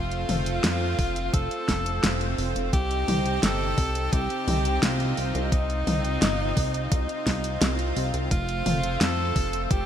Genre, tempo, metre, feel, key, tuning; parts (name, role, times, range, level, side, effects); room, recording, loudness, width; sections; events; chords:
synthwave; 86 BPM; 4/4; straight; C dorian; A4 = 440 Hz
bright tenor saxophone; melody; 0.0-9.9 s; Eb4 to A4; -30 LUFS; equal; digital delay
lush unison pad; sustained chords; 0.0-9.9 s; C3 to G4; -31 LUFS; right 1 dB; chorus, sidechain pumping
chorused synth bass; bass; 0.0-9.9 s; F1 to F2; -28 LUFS; equal
pop drum kit; drums; 0.1-9.8 s; hi-hat, snare drum, toms; -28 LUFS; left 1 dB
electronic kick drum; drums; 1.0-9.8 s; -26 LUFS; equal; overdrive
moderate lush hall reverb, RT60 2.6 s; bright 1980s-style digital production; -23 LUFS; side -9 dB against mid
0.0-9.9 A section
0.0 F; 2.7 Cm; 8.3 F